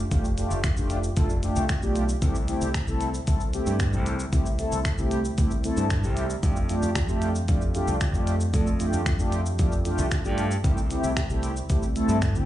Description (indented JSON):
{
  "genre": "dance-pop",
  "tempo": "114 BPM",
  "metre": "4/4",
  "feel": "straight",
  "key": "C major",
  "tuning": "A4 = 440 Hz",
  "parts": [
    { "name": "modern bright fingered electric bass", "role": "bass", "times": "0.0-12.5 s", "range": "F1 to G2", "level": "-27 LUFS", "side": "equal", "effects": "sidechain pumping" },
    { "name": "mellow synth brass", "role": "accompaniment", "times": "0.1-12.5 s", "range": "A3 to A4", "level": "-28 LUFS", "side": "equal", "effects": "chorus, sidechain pumping, slapback echo" },
    { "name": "glitchy drum kit", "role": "drums", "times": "0.1-12.5 s", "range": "finger snaps, hi-hat, kick drum, shaker", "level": "-26 LUFS", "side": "equal", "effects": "none" }
  ],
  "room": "digital ambience",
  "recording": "live gig heard through the venue's PA, club reverb, nothing above 10.5 kHz",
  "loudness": "-22 LUFS",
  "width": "side -13 dB against mid",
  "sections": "0.0-12.5 A section",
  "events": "none",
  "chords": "0.0 F69; 2.2 C6; 6.4 F69; 10.6 C6"
}